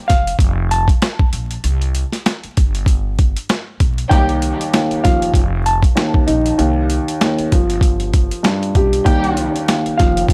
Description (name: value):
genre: hip hop, boom-bap hip-hop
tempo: 97 BPM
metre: 4/4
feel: swing 58% on 16ths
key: C dorian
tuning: A4 = 441 Hz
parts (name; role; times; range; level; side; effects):
- semi-hollow electric guitar; melody; 0.0-10.3 s; F5 to A5; -23 LUFS; equal; high-pass filter, low-pass filter, analog delay
- upright bass; bass; 0.1-10.3 s; F1 to C2; -23 LUFS; equal; none
- boom bap sampler-style drum kit; drums; 0.1-10.3 s; hi-hat, kick drum, snare drum; -18 LUFS; equal; none
- dark upright piano; accompaniment; 4.1-10.3 s; Eb2 to G4; -20 LUFS; equal; cassette tape, high-pass filter, low-pass filter
- dark symphonic string section; stabs; 4.1-4.4, 9.1-9.5 s; G3 to G4; -28 LUFS; equal; high-pass filter, low-pass filter, analog delay
room: small room ambience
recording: dry, gritty hardware recording, vinyl crackle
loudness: -16 LUFS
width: mono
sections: 0.0-10.3 A section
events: break 0.0-4.1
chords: 0.4 Fsus4; 1.6 C5; 2.6 G; 4.1 Cmadd11; 5.3 F7(no3); 6.6 Cm; 7.5 G7; 9.1 Cmadd11